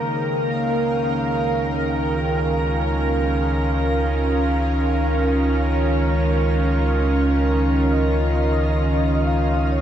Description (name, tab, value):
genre	ambient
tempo	65 BPM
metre	4/4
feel	straight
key	Db lydian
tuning	A4 = 440 Hz
part	warm analog pad	sustained chords	0.0-9.8 s	Eb3 to G5	-20 LUFS	right 1 dB	chorus
part	warm sub bass	bass	0.0-9.8 s	Db2	-22 LUFS	equal	none
part	overtone-sweeping drone	drone	0.0-9.8 s	Db3 to Ab3	-32 LUFS	right 1 dB	none
part	breathy flute-like synth lead	melody	0.5-9.8 s	Db5 to G5	-29 LUFS	equal	analog chorus, diffuse ambient delay
room	wet shimmer reverb, RT60 7.5 s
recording	dark, warm production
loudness	-18 LUFS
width	side -10 dB against mid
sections	0.0-9.8 A section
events	none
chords	0.0 Dbadd9